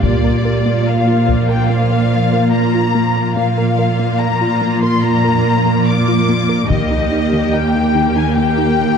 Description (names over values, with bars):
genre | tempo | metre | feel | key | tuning
cinematic, hybrid orchestral and electronic film score | 72 BPM | 4/4 | straight | unclear | A4 = 439 Hz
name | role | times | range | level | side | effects
warm symphonic violin section | melody | 0.0-9.0 s | D5 to D6 | -19 LUFS | left 5 dB | none
rich symphonic viola section | accompaniment | 0.0-9.0 s | Bb3 to G4 | -21 LUFS | equal | none
granular cloud pad | sustained chords | 0.0-9.0 s | Eb3 to G5 | -20 LUFS | left 1 dB | built-in reverb
tight sequenced synth | arpeggios | 0.0-8.7 s | Eb3 to Bb4 | -23 LUFS | left 1 dB | chorus, ping-pong delay
rich studio cello section | bass | 0.0-9.0 s | Eb2 to Bb2 | -17 LUFS | right 3 dB | none
taiko ensemble | drums | 0.0-1.7, 6.7-8.3 s | none | -21 LUFS | left 1 dB | none
room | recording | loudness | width
moderate scoring stage reverb, RT60 2.0 s | dark, warm production | -12 LUFS | side -6 dB against mid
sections
0.0-9.0 A section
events
none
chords
0.0 Bb; 6.7 Eb